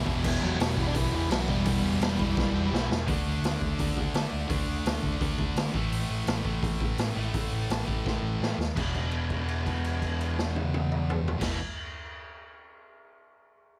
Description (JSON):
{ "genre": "punk rock", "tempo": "169 BPM", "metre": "4/4", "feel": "straight", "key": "E minor", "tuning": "A4 = 440 Hz", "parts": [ { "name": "distorted electric guitar", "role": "riff", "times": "0.0-3.1 s", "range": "E3 to G4", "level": "-39 LUFS", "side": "equal", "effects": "overdrive" }, { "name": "sludgy distorted guitar", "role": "riff", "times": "0.0-11.6 s", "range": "E2 to D4", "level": "-37 LUFS", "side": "equal", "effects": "overdrive" }, { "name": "tight distorted guitar", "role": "riff", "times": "0.0-11.6 s", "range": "E2 to D4", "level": "-37 LUFS", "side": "equal", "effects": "distortion" }, { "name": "overdriven picked electric bass", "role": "bass", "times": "0.0-11.6 s", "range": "E1 to D3", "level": "-34 LUFS", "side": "equal", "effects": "none" }, { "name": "raw garage drum kit", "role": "drums", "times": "0.1-11.5 s", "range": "crash cymbal, hi-hat, kick drum, snare drum, toms", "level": "-33 LUFS", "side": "equal", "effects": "none" }, { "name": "smooth overdriven lead guitar", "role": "melody", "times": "0.4-2.7 s", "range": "E3 to D5", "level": "-33 LUFS", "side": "equal", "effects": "digital delay" } ], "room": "light reverb", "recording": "none", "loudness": "-29 LUFS", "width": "mono", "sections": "0.0-3.1 A section; 3.1-8.8 B section; 8.8-11.6 C section", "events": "drum fill 2.4-3.1, 8.1-8.8; held note 8.8-11.4", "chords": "0.0 Em; 3.1 D5; 5.7 A5; 8.8 E5" }